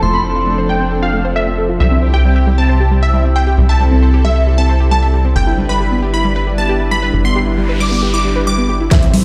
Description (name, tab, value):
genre	uplifting trance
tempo	135 BPM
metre	4/4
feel	straight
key	unclear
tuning	A4 = 440 Hz
part	glassy synth bell	second line	0.0-0.6 s	C6	-23 LUFS	equal	chorus, phaser, vintage 12-bit sampler grit, delay
part	lush unison pad	sustained chords	0.0-9.2 s	A2 to C5	-22 LUFS	equal	chorus, sidechain pumping
part	analog pluck	arpeggios	0.0-9.2 s	G3 to E5	-23 LUFS	equal	chorus, sidechain pumping, tape echo
part	tight sequencer bass	bass	0.0-8.9 s	F1 to C2	-16 LUFS	equal	sidechain pumping
part	supersaw stab	melody	0.1-9.1 s	C5 to D6	-22 LUFS	equal	phaser, sidechain pumping, low-pass filter, tape echo
part	noise sweep	sound effects	7.4-8.9 s	none	-28 LUFS	equal	none
part	dark grand piano	second line	8.9-9.1 s	E5	-27 LUFS	equal	sidechain pumping
part	big-room dance drum kit	drums	8.9-9.2 s	congas, hi-hat, snare drum	-16 LUFS	equal	overdrive, sidechain pumping on cymbals, sidechain pumping on hats, sidechain pumping on perc
part	electronic kick drum	drums	8.9-9.0 s	none	-13 LUFS	equal	overdrive
room	light reverb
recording	played on a big sound system in a bare room, large studio reverb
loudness	-14 LUFS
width	mono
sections	0.0-8.9 A section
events	filter sweep on supersaw synth 0.0-8.9; filter sweep on synth pluck 0.0-8.9; noise sweep 7.4-8.9; drum fill 8.9-9.2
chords	0.0 Fmaj7; 1.8 C; 5.4 G6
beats	| 0.03 0.47 0.91 1.36 | 1.80 2.25 2.69 3.14 | 3.58 4.03 4.47 4.91 | 5.36 5.80 6.25 6.69 | 7.14 7.58 8.03 8.47 | 8.91